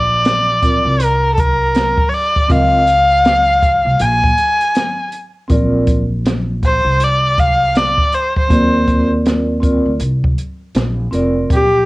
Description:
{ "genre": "hip hop, jazz-hop", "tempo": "80 BPM", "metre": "4/4", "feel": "swing 61% on 16ths", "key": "Bb major", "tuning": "A4 = 442 Hz", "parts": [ { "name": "rich erhu", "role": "melody", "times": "0.0-11.9 s", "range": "G4 to Ab5", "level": "-13 LUFS", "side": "equal", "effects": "cassette tape, plate reverb" }, { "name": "upright bass", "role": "bass", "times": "0.0-11.9 s", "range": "F1 to Eb2", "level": "-18 LUFS", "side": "equal", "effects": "none" }, { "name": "open jazz drum kit", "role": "drums", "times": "0.3-11.7 s", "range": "hi-hat, kick drum, snare drum", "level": "-18 LUFS", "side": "equal", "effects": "none" }, { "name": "vibraphone with soft mallets", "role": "accompaniment", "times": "0.6-11.5 s", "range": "C4 to Eb5", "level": "-18 LUFS", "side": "right 1 dB", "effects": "cassette tape" } ], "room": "light reverb", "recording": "home recording on cassette", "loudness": "-12 LUFS", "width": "side -20 dB against mid", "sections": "0.0-11.5 A section", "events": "none", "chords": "0.0 Bbadd9; 2.5 Db6; 5.5 Bbadd9; 8.5 Eb5; 10.8 Bbadd9", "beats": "0.25 1.00 1.75 | 2.50 3.25 4.00 4.75 | 5.50 6.25 7.00 7.75 | 8.50 9.25 10.00 10.75 | 11.50" }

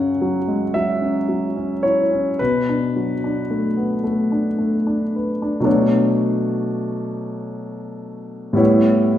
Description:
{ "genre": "classical, impressionist solo piano", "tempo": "35-42 BPM (dotted quarters)", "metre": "6/8", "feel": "rubato", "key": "B minor", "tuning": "A4 = 440 Hz", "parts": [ { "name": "warm concert grand piano", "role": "solo", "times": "0.0-9.2 s", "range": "F#2 to F#5", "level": "-18 LUFS", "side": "left 1 dB", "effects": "none" } ], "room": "wet recital hall reverb, RT60 1.5 s", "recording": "heard from further back in the room", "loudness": "-17 LUFS", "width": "side -11 dB against mid", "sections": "0.0-5.7 A section; 5.7-9.2 B section", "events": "none", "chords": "0.0 F#5; 2.4 Bm7; 5.7 Bm9; 8.6 A9", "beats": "0.74 | 2.39 4.03 | 5.66 7.16 | 8.60" }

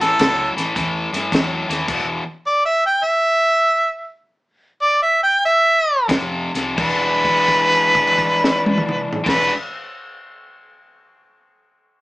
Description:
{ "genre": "electric blues shuffle", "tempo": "85-107 BPM", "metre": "4/4", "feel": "swing 67% on 8ths", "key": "E mixolydian", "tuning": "A4 = 439 Hz", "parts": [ { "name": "warm harmonica", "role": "melody", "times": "0.0-9.5 s", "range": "A4 to G5", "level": "-15 LUFS", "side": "equal", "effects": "overdrive" }, { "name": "cranked stack guitar", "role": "riff", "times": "0.0-2.2, 6.1-9.5 s", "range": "E2 to F#4", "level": "-21 LUFS", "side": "left 1 dB", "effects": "overdrive" }, { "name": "vintage muted fingered electric bass", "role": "bass", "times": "0.0-2.2, 6.1-9.5 s", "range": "E1 to G2", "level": "-32 LUFS", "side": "equal", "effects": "none" }, { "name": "compact cocktail drum kit", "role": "drums", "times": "0.0-2.1, 6.1-9.4 s", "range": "crash cymbal, hi-hat, kick drum, snare drum, toms", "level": "-22 LUFS", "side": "equal", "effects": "none" } ], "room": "moderate studio reverb, RT60 0.5 s", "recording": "band playing live in one room, small speaker sound", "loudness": "-15 LUFS", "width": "side -19 dB against mid", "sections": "0.0-6.8 A section; 6.8-9.6 B section", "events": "slowing down 1.9-6.8; held note 6.8-9.2", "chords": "0.0 A6; 1.9 E5; 6.1 F5; 6.8 E9", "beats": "0.20 0.76 1.32 | 1.89 2.45 3.02 3.60 | 4.20 4.81 5.44 6.09 | 6.78 7.48 8.18 8.89" }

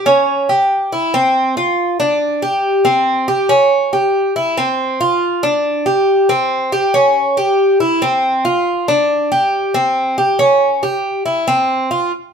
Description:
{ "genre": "latin", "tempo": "139 BPM", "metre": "4/4", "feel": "straight", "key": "unclear", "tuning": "A4 = 440 Hz", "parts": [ { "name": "Cuban tres", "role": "solo", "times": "0.0-12.1 s", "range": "C4 to G4", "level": "-12 LUFS", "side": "equal", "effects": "none" } ], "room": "moderate studio reverb, RT60 0.8 s", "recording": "band playing live in one room", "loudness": "-13 LUFS", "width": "side -6 dB against mid", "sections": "0.0-12.1 A section", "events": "none", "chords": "none", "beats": "| 0.07 0.49 0.92 1.35 | 1.78 2.21 2.64 3.07 | 3.50 3.92 4.35 4.78 | 5.21 5.64 6.08 6.51 | 6.94 7.37 7.80 8.23 | 8.66 9.09 9.53 9.96 | 10.39 10.82 11.25 11.68" }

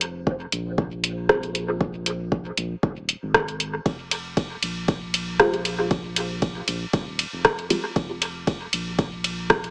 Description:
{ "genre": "dub techno", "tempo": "117 BPM", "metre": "4/4", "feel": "swing 55% on 16ths", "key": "F minor", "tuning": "A4 = 440 Hz", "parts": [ { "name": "round analog bass", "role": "bass", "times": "0.0-9.7 s", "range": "Eb1 to Bb1", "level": "-32 LUFS", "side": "equal", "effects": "sidechain pumping" }, { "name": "deep house drum kit", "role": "drums", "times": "0.0-9.7 s", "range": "hi-hat, ride cymbal, rim click", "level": "-23 LUFS", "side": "equal", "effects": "dub echo" }, { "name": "electronic kick drum", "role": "drums", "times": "0.3-9.6 s", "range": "none", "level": "-24 LUFS", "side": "equal", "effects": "none" }, { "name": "filtered dub chord stab", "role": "stabs", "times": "1.3-1.4, 5.4-9.6 s", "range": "F4 to C5", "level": "-26 LUFS", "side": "equal", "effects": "phaser, sidechain pumping, dub echo" } ], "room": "moderate plate reverb, RT60 1.7 s", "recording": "echo-heavy mix, small speaker sound", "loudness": "-22 LUFS", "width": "side -30 dB against mid", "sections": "0.0-9.7 A section", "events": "none", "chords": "0.0 Fm", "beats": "0.27 0.78 1.29 | 1.81 2.32 2.83 3.34 | 3.86 4.37 4.88 5.40 | 5.91 6.42 6.93 7.45 | 7.96 8.47 8.98 9.50" }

